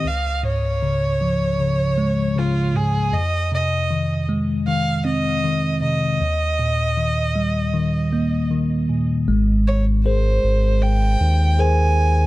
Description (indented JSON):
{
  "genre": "pop ballad",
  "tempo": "78 BPM",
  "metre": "4/4",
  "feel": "straight",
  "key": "Ab major",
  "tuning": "A4 = 439 Hz",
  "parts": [
    { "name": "rich violin", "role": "melody", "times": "0.0-12.3 s", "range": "F4 to Ab5", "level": "-23 LUFS", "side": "right 1 dB", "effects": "tape echo" },
    { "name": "bell-like tine electric piano", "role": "accompaniment", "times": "0.0-12.3 s", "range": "Db2 to C5", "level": "-20 LUFS", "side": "left 1 dB", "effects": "auto-pan" },
    { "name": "sub bass with octave", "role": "bass", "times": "9.3-12.3 s", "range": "Ab1 to Eb2", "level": "-17 LUFS", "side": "equal", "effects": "none" }
  ],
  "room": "small room ambience",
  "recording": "dark, warm production",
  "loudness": "-17 LUFS",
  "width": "side -17 dB against mid",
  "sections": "0.0-9.3 A section; 9.3-12.3 B section",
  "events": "none",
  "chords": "0.1 Db; 3.1 Fm7; 6.2 Eb; 9.3 Abadd9"
}